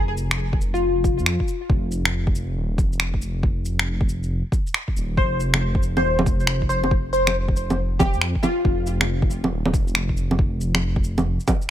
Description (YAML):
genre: future garage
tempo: 138 BPM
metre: 4/4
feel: swing 64% on 16ths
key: unclear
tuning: A4 = 442 Hz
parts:
  - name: plucky unison lead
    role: melody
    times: 0.0-1.2, 5.2-8.9 s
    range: F4 to C5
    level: -25 LUFS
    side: left 2 dB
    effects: wide subtle chorus, tape echo
  - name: dark detuned saw bass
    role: bass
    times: 0.0-11.4 s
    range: Eb1 to F2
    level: -24 LUFS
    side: equal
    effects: tube saturation, sidechain pumping
  - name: electronic shaker, finger snaps and bongos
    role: drums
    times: 0.2-11.7 s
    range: none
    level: -22 LUFS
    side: right 1 dB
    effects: none
  - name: electronic kick drum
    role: drums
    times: 0.5-11.6 s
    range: none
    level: -22 LUFS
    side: equal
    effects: none
room: little or no reverb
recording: none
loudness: -19 LUFS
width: side -11 dB against mid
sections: 0.0-11.7 A section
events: none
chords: none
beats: 0.39 0.82 1.26 | 1.70 2.13 2.56 3.00 | 3.43 3.87 4.30 4.74 | 5.17 5.61 6.04 6.48 | 6.91 7.35 7.78 8.22 | 8.65 9.09 9.52 9.96 | 10.39 10.82 11.26